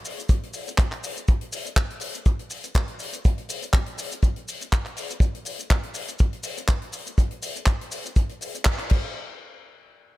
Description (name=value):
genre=nu-disco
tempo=122 BPM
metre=4/4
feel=swing 55% on 16ths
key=none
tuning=none
part: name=tight funk drum kit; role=drums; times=0.0-9.0 s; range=crash cymbal, handclaps, hi-hat, shaker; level=-30 LUFS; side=left 1 dB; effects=none
part: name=kick drum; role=drums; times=0.3-9.0 s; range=none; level=-19 LUFS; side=equal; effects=none
room=little or no reverb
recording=none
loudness=-23 LUFS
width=side -18 dB against mid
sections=0.0-9.1 A section; 9.1-10.2 B section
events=drop 0.0-9.1; band accent 8.7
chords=none